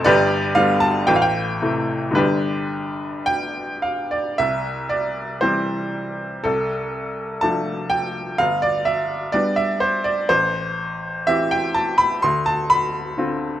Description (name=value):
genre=classical, romantic character piece for solo piano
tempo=52-64 BPM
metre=2/4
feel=rubato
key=C major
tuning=A4 = 445 Hz
part: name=bright upright piano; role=solo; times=0.0-13.6 s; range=G1 to C6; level=-18 LUFS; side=equal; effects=none
room=moderate recital hall reverb, RT60 1.4 s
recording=close, detailed microphones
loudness=-18 LUFS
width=side -12 dB against mid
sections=0.0-4.4 A section; 4.4-13.6 B section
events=none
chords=0.1 G; 1.1 Am7; 2.2 G; 4.4 C; 6.4 Dm/C; 8.4 G; 10.3 Am7; 12.2 Dm7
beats=| 0.07 1.08 | 2.17 3.27 | 4.39 5.41 | 6.44 7.41 | 8.39 9.33 | 10.30 11.28 | 12.23 13.17